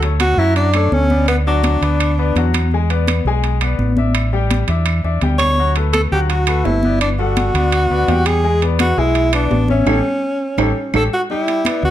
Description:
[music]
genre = latin, salsa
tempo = 168 BPM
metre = 4/4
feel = straight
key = D major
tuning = A4 = 440 Hz
[part]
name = bright grand piano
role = accompaniment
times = 0.0-11.9 s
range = F#3 to G#5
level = -22 LUFS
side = left 8 dB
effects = none
[part]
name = fingered electric bass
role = bass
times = 0.0-11.9 s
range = G1 to F#2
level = -17 LUFS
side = right 1 dB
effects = none
[part]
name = congas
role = percussion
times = 0.0-11.9 s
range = none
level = -23 LUFS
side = left 2 dB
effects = none
[part]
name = timbales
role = percussion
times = 0.0-11.8 s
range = none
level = -24 LUFS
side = right 8 dB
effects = none
[part]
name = bright tenor saxophone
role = melody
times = 0.2-2.5, 5.4-11.9 s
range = B3 to C#5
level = -18 LUFS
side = right 1 dB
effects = plate reverb
[part]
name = claves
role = percussion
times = 0.2-11.8 s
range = none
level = -29 LUFS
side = right 5 dB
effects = none
[sound]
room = light reverb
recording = dark, warm production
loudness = -14 LUFS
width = side -12 dB against mid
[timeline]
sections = 0.0-11.3 A section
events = band accent 9.9-11.3; drum fill 10.6-11.3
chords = 0.0 Dmaj7; 1.3 D69; 2.7 E7; 4.2 A7sus4; 5.6 D69; 7.0 Gmaj9; 8.4 E7; 9.9 A7; 11.3 G

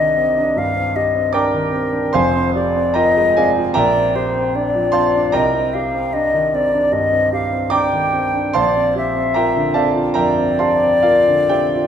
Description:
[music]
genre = classical, impressionist duo for flute and grand piano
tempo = 75 BPM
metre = 4/4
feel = rubato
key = unclear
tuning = A4 = 440 Hz
[part]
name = concert flute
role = melody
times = 0.0-11.9 s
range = Bb4 to G5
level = -17 LUFS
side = left 2 dB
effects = none
[part]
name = warm grand piano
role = accompaniment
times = 0.0-11.9 s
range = F1 to D6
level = -17 LUFS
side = right 2 dB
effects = none
[sound]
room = moderate recital hall reverb, RT60 1.4 s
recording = none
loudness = -14 LUFS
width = side -8 dB against mid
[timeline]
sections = 0.0-11.9 A section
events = none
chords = 0.0 Cm9; 2.2 Fmadd9; 3.8 Bb69; 5.4 Cm9; 8.6 Bb69

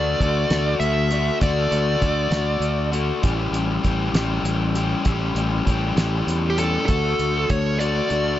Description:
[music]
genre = indie rock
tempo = 66 BPM (dotted quarters)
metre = 6/8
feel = straight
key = D major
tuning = A4 = 440 Hz
[part]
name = dark smooth lead guitar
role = melody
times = 0.0-2.9, 6.5-8.4 s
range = G4 to E5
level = -24 LUFS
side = right 1 dB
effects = overdrive, plate reverb, digital delay
[part]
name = raw garage guitar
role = riff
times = 0.0-8.4 s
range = A2 to G4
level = -24 LUFS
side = left 4 dB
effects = overdrive
[part]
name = growling fingered electric bass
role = bass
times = 0.0-8.4 s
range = A1 to E2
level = -24 LUFS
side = equal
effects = overdrive
[part]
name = cloth-damped thuddy drum kit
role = drums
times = 0.2-8.2 s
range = hi-hat, kick drum, snare drum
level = -24 LUFS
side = equal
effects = none
[sound]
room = light reverb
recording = nothing above 7.8 kHz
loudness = -19 LUFS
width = side -12 dB against mid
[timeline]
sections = 0.0-6.9 A section; 6.9-8.4 B section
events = none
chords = 0.0 D; 3.2 A7; 6.9 D

